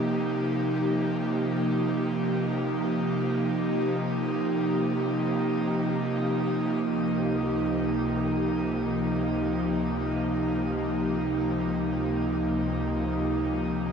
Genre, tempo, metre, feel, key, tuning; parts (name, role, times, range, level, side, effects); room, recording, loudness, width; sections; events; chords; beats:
ambient; free time; Db lydian; A4 = 440 Hz
airy breathy pad; solo; 0.0-13.9 s; Db2 to G4; -25 LUFS; equal; chorus, ping-pong delay
wet shimmer reverb, RT60 8.6 s; -25 LUFS; side -6 dB against mid
0.0-6.8 A section; 6.8-13.9 B section
0.0 Eb69; 6.8 Dbmaj9
free time